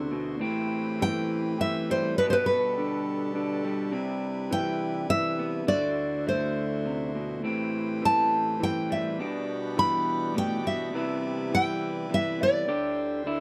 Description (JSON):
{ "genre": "acoustic folk-pop ballad", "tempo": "103 BPM", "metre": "3/4", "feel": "straight", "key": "unclear", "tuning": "A4 = 440 Hz", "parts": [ { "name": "electric guitar through a small old amp", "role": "accompaniment", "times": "0.0-13.4 s", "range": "A2 to G4", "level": "-32 LUFS", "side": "equal", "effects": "none" }, { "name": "pedal harmonium", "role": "sustained chords", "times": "0.0-13.4 s", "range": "D2 to D5", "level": "-37 LUFS", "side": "equal", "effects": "none" }, { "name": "nylon-string guitar", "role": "melody", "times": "1.0-13.4 s", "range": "B4 to B5", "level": "-29 LUFS", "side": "equal", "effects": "none" } ], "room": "light reverb", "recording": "close, detailed microphones", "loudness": "-28 LUFS", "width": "mono", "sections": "0.4-13.4 A section", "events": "none", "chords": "0.4 Am7; 2.2 Gmaj7/B; 3.9 Cmaj7; 5.7 D7; 7.4 Am7; 9.2 Em7/B; 10.9 Cmaj7; 12.7 D7sus4" }